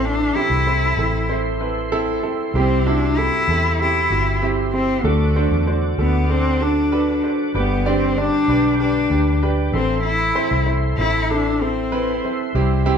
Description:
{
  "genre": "pop",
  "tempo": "96 BPM",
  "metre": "4/4",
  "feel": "straight",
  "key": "unclear",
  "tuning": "A4 = 440 Hz",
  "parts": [
    { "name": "rich cello", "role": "melody", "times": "0.0-12.2 s", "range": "A3 to E4", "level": "-20 LUFS", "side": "left 3 dB", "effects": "none" },
    { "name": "clear concert grand piano", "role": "accompaniment", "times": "0.0-13.0 s", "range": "G2 to D5", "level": "-22 LUFS", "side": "right 4 dB", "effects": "none" },
    { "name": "percussive tonewheel organ", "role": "sustained chords", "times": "0.0-13.0 s", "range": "G4 to D6", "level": "-30 LUFS", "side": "left 1 dB", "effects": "overdrive, chorus vibrato, slow rotary speaker" },
    { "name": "vintage muted fingered electric bass", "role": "bass", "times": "0.0-13.0 s", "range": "G1 to E2", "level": "-21 LUFS", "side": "equal", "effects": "none" }
  ],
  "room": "moderate large studio reverb, RT60 1.2 s",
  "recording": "band playing live in one room",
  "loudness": "-16 LUFS",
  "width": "side -7 dB against mid",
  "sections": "0.0-13.0 A section",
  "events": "none",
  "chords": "0.0 Am; 2.5 C; 5.0 D; 7.5 G; 9.7 Am",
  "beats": "| 0.04 0.66 1.29 1.91 | 2.54 3.17 3.79 4.42 | 5.04 5.67 6.29 6.92 | 7.55 8.17 8.80 9.42 | 10.05 10.67 11.30 11.93 | 12.55"
}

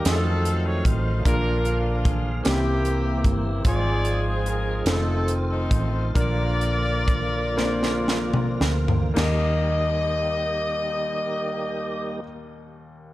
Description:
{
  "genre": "slow gospel",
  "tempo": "35-50 BPM (dotted quarters)",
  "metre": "6/8",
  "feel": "straight",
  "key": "Eb major",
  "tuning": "A4 = 440 Hz",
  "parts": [
    { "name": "clear horn section", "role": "melody", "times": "0.0-12.2 s", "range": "Bb3 to Eb5", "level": "-28 LUFS", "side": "left 2 dB", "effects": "none" },
    { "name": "clear baby grand piano", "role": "accompaniment", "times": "0.0-13.1 s", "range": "Eb2 to C5", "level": "-29 LUFS", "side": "left 1 dB", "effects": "none" },
    { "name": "tonewheel organ", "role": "sustained chords", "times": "0.0-12.2 s", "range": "D3 to F5", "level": "-32 LUFS", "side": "right 3 dB", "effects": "slow rotary speaker, chorus vibrato" },
    { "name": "hollow-body short-scale fingered electric bass", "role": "bass", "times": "0.1-12.2 s", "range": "F1 to F2", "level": "-25 LUFS", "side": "equal", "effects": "none" },
    { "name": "crisp fusion drum kit", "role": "drums", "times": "0.1-9.4 s", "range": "crash cymbal, hi-hat, kick drum, snare drum, toms", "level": "-25 LUFS", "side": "equal", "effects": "none" }
  ],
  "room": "light reverb, studio reverb",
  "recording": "none",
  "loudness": "-21 LUFS",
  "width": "side -16 dB against mid",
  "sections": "0.0-9.2 A section; 9.2-12.6 B section",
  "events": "slowing down 3.6-9.2; drum fill 7.6-9.2",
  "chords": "0.1 F7b9; 1.3 Bb; 2.5 C7; 3.6 Fm/Ab; 4.9 F7; 6.2 Bb; 9.2 Eb",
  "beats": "0.06 | 1.25 2.45 | 3.65 4.87 | 6.15 7.56 | 9.16 10.89"
}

